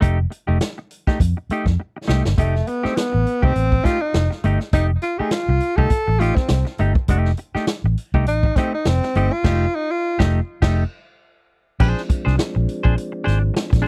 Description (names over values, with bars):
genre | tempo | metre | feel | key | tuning
funk | 102 BPM | 4/4 | swing 56% on 16ths | F mixolydian | A4 = 438 Hz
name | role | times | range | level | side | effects
clean electric guitar | accompaniment | 0.0-13.9 s | A3 to C5 | -26 LUFS | equal | none
vintage muted fingered electric bass | bass | 0.0-13.8 s | F1 to F2 | -21 LUFS | equal | none
swinging big-band drum kit | drums | 0.0-13.8 s | crash cymbal, hi-hat, kick drum, snare drum | -22 LUFS | equal | none
breathy tenor saxophone | melody | 2.4-10.2 s | A3 to A4 | -25 LUFS | equal | tape echo
mellow tonewheel organ | sustained chords | 11.8-13.9 s | F3 to D4 | -32 LUFS | equal | slow rotary speaker
room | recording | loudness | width
little or no reverb | dry, close 1970s-style studio recording | -20 LUFS | mono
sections
0.0-2.4 A section; 2.4-11.8 B section; 11.8-13.9 C section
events
drum fill 1.8-2.4; tenor saxophone solo 2.4-11.8; band accent 9.4-11.8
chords
0.0 F9; 11.8 Bb9